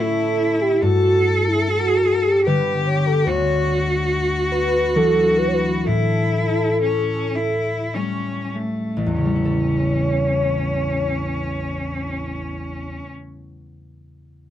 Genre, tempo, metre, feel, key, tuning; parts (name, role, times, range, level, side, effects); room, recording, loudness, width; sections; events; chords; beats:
celtic folk, Celtic slow air; 46-75 BPM; 3/4; rubato; A mixolydian; A4 = 441 Hz
warm velvety synth lead; melody; 0.0-13.1 s; E4 to C#5; -21 LUFS; equal; chorus
clear cello; second line; 0.0-13.1 s; A3 to A4; -24 LUFS; left 1 dB
concert harp; accompaniment; 0.0-13.4 s; A1 to A4; -22 LUFS; left 1 dB
light reverb; dry, close 1970s-style studio recording; -18 LUFS; side -11 dB against mid
0.0-9.2 A section; 9.2-13.0 B section
slowing down 3.3-9.2
0.0 A; 0.8 G; 3.3 Dadd9; 5.9 A7
| 0.81 1.64 2.45 | 3.26 4.08 4.96 | 5.87 6.85 7.96 | 9.22 10.49 11.76